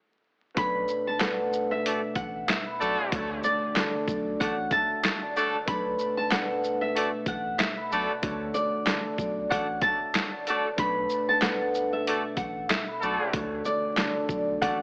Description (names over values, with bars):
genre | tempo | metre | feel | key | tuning
hip hop, boom-bap hip-hop | 94 BPM | 4/4 | swing 56% on 16ths | unclear | A4 = 440 Hz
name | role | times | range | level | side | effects
concert harp | accompaniment | 0.5-14.8 s | B2 to C#6 | -33 LUFS | equal | high-pass filter, low-pass filter
flamenco guitar | melody | 0.6-14.8 s | D5 to B5 | -32 LUFS | equal | high-pass filter, low-pass filter, tape echo
soft dub sub bass | bass | 0.6-14.8 s | A1 to D2 | -44 LUFS | equal | none
boom bap sampler-style drum kit | drums | 0.6-14.8 s | handclaps, hi-hat, kick drum, shaker, snare drum | -31 LUFS | equal | none
clear horn section | stabs | 1.9-14.8 s | A3 to A4 | -33 LUFS | equal | high-pass filter, low-pass filter, tape echo
room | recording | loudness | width
light reverb, studio reverb | vinyl crackle, AM radio sound | -28 LUFS | mono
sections
0.6-14.8 A section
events
break 0.0-0.6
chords
0.0 N.C.; 0.6 Bm9